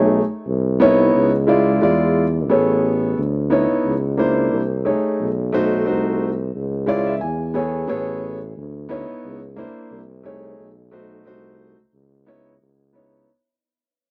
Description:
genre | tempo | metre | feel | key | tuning
hip hop, jazz-hop | 89 BPM | 4/4 | swing 57% on 16ths | C# minor | A4 = 436 Hz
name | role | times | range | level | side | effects
warm concert grand piano | accompaniment | 0.0-13.3 s | G#3 to G#5 | -20 LUFS | equal | cassette tape
mellow tuba | bass | 0.0-13.3 s | A1 to E2 | -24 LUFS | equal | transformer saturation
room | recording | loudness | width
light reverb, studio reverb | home recording on cassette | -19 LUFS | mono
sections
0.0-13.3 A section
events
fade-out 0.0-13.3; grand piano fill 6.5-7.9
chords
0.5 Cmmaj7; 1.1 C#m9; 1.8 E7b9; 2.5 Amaj9; 3.2 Dsus2; 3.8 C#m; 4.5 G#add11/B#; 5.2 B7; 5.9 Cdim7; 6.5 C#m; 7.2 E; 7.9 Amaj9; 8.6 Dsus2; 9.2 C#m9; 9.9 G#add11/B#; 10.6 B7; 11.3 Cdim7; 11.9 C#m9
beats
0.47 1.15 1.82 | 2.50 3.17 3.84 4.52 | 5.19 5.87 6.54 7.21 | 7.89 8.56 9.24 9.91 | 10.59 11.26 11.93 12.61

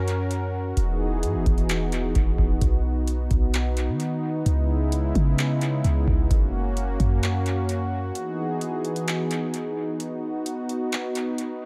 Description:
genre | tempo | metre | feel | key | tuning
hip hop, atmospheric cloud-rap | 130 BPM | 4/4 | half-time | unclear | A4 = 442 Hz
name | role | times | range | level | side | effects
warm analog pad | sustained chords | 0.0-11.7 s | C#3 to A#4 | -30 LUFS | equal | chorus, sidechain pumping
clean 808-style bass | bass | 0.0-8.1 s | E1 to D#3 | -26 LUFS | equal | none
booming analog drum machine | drums | 0.1-11.5 s | handclaps, hi-hat, kick drum | -28 LUFS | equal | overdrive, tape echo
room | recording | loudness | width
little or no reverb | echo-heavy mix | -25 LUFS | mono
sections
0.0-11.7 A section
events
break 8.2-10.0; kick muted 10.0-11.7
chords
0.0 F#; 0.8 Emaj7; 2.6 B; 4.5 C#m7; 6.3 F#; 8.2 Emaj7; 10.0 B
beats
0.31 | 0.77 1.23 1.69 2.15 | 2.62 3.08 3.54 4.00 | 4.46 4.92 5.38 5.85 | 6.31 6.77 7.23 7.69 | 8.15 8.62 9.08 9.54 | 10.00 10.46 10.92 11.38

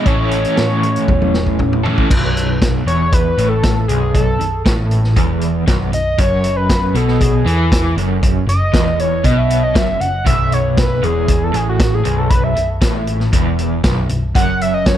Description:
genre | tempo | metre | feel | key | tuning
psychedelic rock | 118 BPM | 4/4 | straight | B mixolydian | A4 = 440 Hz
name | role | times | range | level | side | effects
overdriven synth lead | melody | 0.0-15.0 s | F#4 to F#5 | -20 LUFS | equal | tape echo
crunchy overdriven guitar | riff | 0.0-15.0 s | B1 to A4 | -18 LUFS | right 1 dB | tremolo
hollow-body short-scale picked electric bass | bass | 0.1-15.0 s | B0 to A2 | -19 LUFS | equal | none
vintage drum kit | drums | 0.1-15.0 s | crash cymbal, hi-hat, kick drum, snare drum, toms | -17 LUFS | equal | none
room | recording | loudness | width
light reverb, small room ambience | none | -13 LUFS | side -11 dB against mid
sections
0.0-2.1 A section; 2.1-15.0 B section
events
drum fill 1.1-2.1; analog synth lead solo 2.1-15.0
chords
0.1 A; 2.1 B7sus4; 6.2 N.C.; 10.3 B7sus4; 14.3 C#sus4 (rootless)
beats
| 0.06 0.57 1.08 1.59 | 2.10 2.62 3.13 3.64 | 4.15 4.66 5.17 5.68 | 6.19 6.70 7.21 7.72 | 8.23 8.74 9.25 9.76 | 10.27 10.78 11.29 11.80 | 12.31 12.82 13.33 13.84 | 14.35 14.86

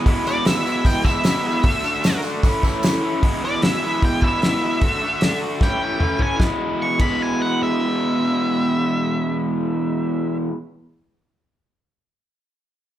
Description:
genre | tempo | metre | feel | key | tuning
garage rock duo or trio | 151 BPM | 4/4 | straight | E mixolydian | A4 = 440 Hz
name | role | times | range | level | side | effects
raw garage guitar | riff | 0.0-10.5 s | E2 to F#4 | -21 LUFS | equal | overdrive
cloth-damped thuddy drum kit | drums | 0.1-7.1 s | crash cymbal, hi-hat, kick drum, snare drum, toms | -20 LUFS | equal | none
octave-fuzz lead guitar | melody | 0.3-10.4 s | D5 to C#6 | -24 LUFS | equal | distortion
tambourine | percussion | 0.3-2.9 s | none | -36 LUFS | right 4 dB | none
room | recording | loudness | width
moderate large studio reverb, RT60 0.9 s | band playing live in one room | -18 LUFS | side -12 dB against mid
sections
0.1-6.4 A section; 6.4-9.6 B section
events
lead electric guitar solo 0.1-6.4; drum fill 5.6-6.4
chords
0.1 E; 1.6 D; 2.4 A; 3.2 E; 4.8 D; 5.6 A; 6.4 E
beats
| 0.06 0.46 0.85 1.24 | 1.64 2.04 2.43 2.83 | 3.23 3.62 4.02 4.42 | 4.82 5.21 5.61 6.01 | 6.41 6.81 7.21 7.61 | 8.01 8.40 8.80 9.20

